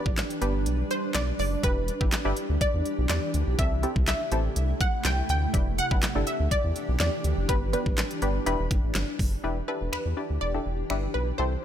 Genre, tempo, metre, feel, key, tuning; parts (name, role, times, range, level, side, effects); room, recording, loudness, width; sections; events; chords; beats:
dance-pop; 123 BPM; 4/4; straight; E minor; A4 = 438 Hz
wide unison pluck; melody; 0.0-11.6 s; B4 to G5; -32 LUFS; equal; tape echo
punchy chord stab; accompaniment; 0.0-11.5 s; B3 to D5; -32 LUFS; left 2 dB; chorus, sidechain pumping
shimmering ambient pad; sustained chords; 0.0-11.6 s; C3 to B4; -33 LUFS; right 1 dB; chorus, built-in reverb, sidechain pumping
round analog bass; bass; 0.1-11.6 s; E1 to E2; -28 LUFS; equal; sidechain pumping
pop drum kit; drums; 0.1-11.0 s; finger snaps, handclaps, hi-hat, kick drum, snare drum; -28 LUFS; equal
digital ambience; -24 LUFS; side -10 dB against mid
0.0-9.4 A section; 9.4-11.6 B section
kick muted 0.7-1.6
0.0 G; 1.6 Em7; 3.6 C6; 5.5 Em7; 7.5 G; 8.5 Em7
0.17 0.66 1.15 | 1.64 2.12 2.61 3.10 | 3.59 4.08 4.56 5.05 | 5.54 6.03 6.51 7.00 | 7.49 7.98 8.46 8.95 | 9.44 9.93 10.42 10.90 | 11.39